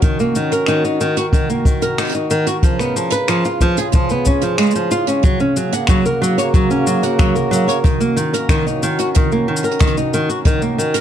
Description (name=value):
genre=folktronica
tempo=92 BPM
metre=4/4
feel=straight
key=F# major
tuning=A4 = 440 Hz
part: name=pedal harmonium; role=sustained chords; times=0.0-11.0 s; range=C#3 to A#4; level=-22 LUFS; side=right 2 dB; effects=stereo widening
part: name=flamenco guitar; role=arpeggios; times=0.0-11.0 s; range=D#3 to F#5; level=-17 LUFS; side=equal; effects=ping-pong delay
part: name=jazz brush drum kit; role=drums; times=0.0-11.0 s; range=cabasa, finger snaps, hi-hat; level=-24 LUFS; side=right 1 dB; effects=none
part: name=kick drum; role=drums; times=0.0-10.6 s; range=none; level=-17 LUFS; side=equal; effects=none
room=light reverb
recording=dark, warm production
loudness=-14 LUFS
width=side -10 dB against mid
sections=0.0-5.2 A section; 5.2-11.0 B section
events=kick drops out 4.6-5.2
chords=0.0 D#m7; 2.6 C#7; 5.2 F#; 7.8 D#m7